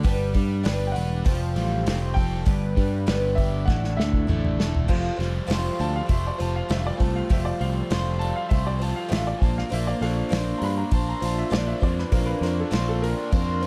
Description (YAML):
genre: folk rock and heartland rock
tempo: 99 BPM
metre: 4/4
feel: straight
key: unclear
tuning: A4 = 439 Hz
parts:
  - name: picked twelve-string acoustic guitar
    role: accompaniment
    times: 0.0-13.7 s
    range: A2 to C5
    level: -33 LUFS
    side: equal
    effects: none
  - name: accordion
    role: sustained chords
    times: 0.0-13.7 s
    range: Bb3 to D5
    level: -40 LUFS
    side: equal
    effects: none
  - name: crunchy overdriven guitar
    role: riff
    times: 0.0-13.7 s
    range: G2 to C5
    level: -34 LUFS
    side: equal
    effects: spring reverb
  - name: picked electric bass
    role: bass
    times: 0.0-13.7 s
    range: E1 to G2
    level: -28 LUFS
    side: equal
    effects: none
  - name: unplugged drum kit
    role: drums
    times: 0.0-13.7 s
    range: crash cymbal, hi-hat, kick drum, snare drum, toms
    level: -27 LUFS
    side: equal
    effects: none
  - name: warm grand piano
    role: melody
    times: 0.9-4.5 s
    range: E5 to G5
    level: -35 LUFS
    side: equal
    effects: none
  - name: clear upright piano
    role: second line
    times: 5.8-13.7 s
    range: A4 to B5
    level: -36 LUFS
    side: equal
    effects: none
room: small room reverb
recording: dark, warm production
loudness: -24 LUFS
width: mono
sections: 0.0-4.9 A section; 4.9-13.7 B section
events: drum fill 3.7-4.9; upright piano solo 4.9-13.7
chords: 0.0 G; 1.3 Fadd9; 2.5 G; 3.7 Asus4; 4.9 Fadd9; 9.4 Bbadd9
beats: | 0.05 0.65 1.26 1.86 | 2.46 3.07 3.67 4.28 | 4.88 5.49 6.09 6.70 | 7.30 7.90 8.51 9.11 | 9.71 10.32 10.92 11.52 | 12.13 12.73 13.33